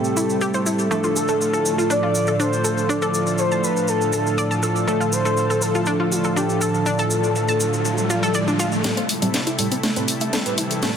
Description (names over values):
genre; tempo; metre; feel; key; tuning
progressive house; 121 BPM; 4/4; straight; unclear; A4 = 440 Hz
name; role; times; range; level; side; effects
expressive portamento lead; melody; 0.0-8.3 s; F4 to D5; -24 LUFS; left 2 dB; lush chorus, tape echo
lush unison pad; sustained chords; 0.0-11.0 s; A2 to A4; -27 LUFS; left 1 dB; chorus
chorused polysynth; stabs; 0.0-10.9 s; A2 to B4; -23 LUFS; right 2 dB; tape echo
house drum kit; drums; 0.0-10.9 s; hi-hat, snare drum; -25 LUFS; left 1 dB; low-pass filter on hats, low-pass filter on snare
cabasa; percussion; 0.0-10.9 s; none; -29 LUFS; right 1 dB; none
analog pluck; arpeggios; 0.2-10.9 s; G3 to A5; -25 LUFS; left 1 dB; chorus, tape echo
riser; sound effects; 6.8-11.0 s; none; -30 LUFS; left 2 dB; none
room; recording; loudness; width
moderate lush hall reverb, RT60 2.4 s; dense, heavily limited modern master; -18 LUFS; side -8 dB against mid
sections
0.0-8.8 A section; 8.8-11.0 B section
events
filter sweep on synth arpeggio sound 0.0-8.8; filter sweep on analog polysynth 0.0-8.8, 8.8-11.0; riser 6.8-8.8; build-up 8.8-11.0; drum fill 8.8-11.0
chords
0.0 Am7; 0.9 Dm/A; 8.8 Am7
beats
0.41 | 0.91 1.41 1.90 2.40 | 2.89 3.39 3.88 4.38 | 4.88 5.37 5.87 6.36 | 6.86 7.36 7.85 8.35 | 8.84 9.34 9.84 10.33 | 10.83